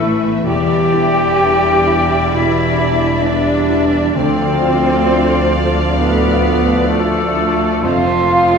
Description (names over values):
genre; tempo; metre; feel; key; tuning
cinematic; 65 BPM; 4/4; rubato; unclear; A4 = 441 Hz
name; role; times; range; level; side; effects
muted cello; melody; 0.0-8.6 s; A3 to G4; -19 LUFS; right 3 dB; none
muted symphonic violin section; melody; 0.0-8.6 s; E5 to F5; -28 LUFS; left 2 dB; none
muted studio violin section; second line; 0.0-8.6 s; A4 to D5; -24 LUFS; left 2 dB; none
small flute group; second line; 0.0-8.6 s; A4 to G5; -20 LUFS; left 3 dB; none
warm clarinet; second line; 0.0-8.6 s; A3 to G4; -20 LUFS; left 2 dB; none
felt-muted upright piano; accompaniment; 0.0-8.6 s; D2 to F4; -23 LUFS; left 1 dB; none
muted symphonic viola section; accompaniment; 0.0-8.6 s; G3 to C4; -25 LUFS; right 1 dB; none
mellow French horn section; sustained chords; 0.0-8.6 s; E3 to E4; -23 LUFS; equal; none
concert harp; arpeggios; 0.0-8.6 s; A2 to B5; -25 LUFS; left 4 dB; none
muted symphonic cello section; bass; 0.0-8.6 s; D2 to A2; -22 LUFS; right 3 dB; none
muted symphonic double bass section; bass; 0.0-8.6 s; E1 to D2; -23 LUFS; right 2 dB; none
room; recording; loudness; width
wet scoring stage reverb, RT60 1.6 s; recorded in a church or concert hall; -12 LUFS; side -6 dB against mid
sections
0.0-8.6 A section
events
none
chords
0.5 Em7; 4.2 Dm7; 7.8 Fmaj7